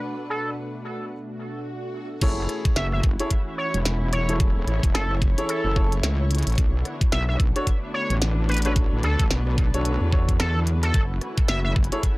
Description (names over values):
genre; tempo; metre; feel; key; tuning
glitch hop; 110 BPM; 4/4; swing 59% on 16ths; F# minor; A4 = 440 Hz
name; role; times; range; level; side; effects
warm analog pad; sustained chords; 0.0-12.2 s; B2 to F#4; -35 LUFS; equal; chorus, sidechain pumping
warm grand piano; stabs; 0.0-12.0 s; B2 to C#5; -31 LUFS; left 1 dB; sidechain pumping, tape echo
dark symphonic string section; texture; 0.0-12.2 s; A3 to F#5; -36 LUFS; left 1 dB; sidechain pumping
sync lead; melody; 0.3-11.7 s; A4 to E5; -29 LUFS; equal; chorus, tape echo
swell; sound effects; 1.4-2.2 s; none; -37 LUFS; right 2 dB; none
wobble bass; bass; 2.2-11.9 s; E1 to E2; -23 LUFS; equal; chorus
electronic kick drum; drums; 2.2-12.2 s; none; -22 LUFS; equal; none
glitchy drum kit; drums; 2.2-12.2 s; crash cymbal, hi-hat, rim click, snare drum; -30 LUFS; equal; low-pass filter on hats, low-pass filter on cymbals, low-pass filter on snare, low-pass filter on room
room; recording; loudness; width
little or no reverb; dry, gritty hardware recording, transformer saturation; -20 LUFS; side -21 dB against mid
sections
0.0-2.2 A section; 2.2-12.2 B section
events
break 1.1-2.2; swell 1.4-2.2; drop 2.2-12.2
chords
0.0 Bm7; 2.2 F#m7; 6.6 Bm7; 10.9 F#m7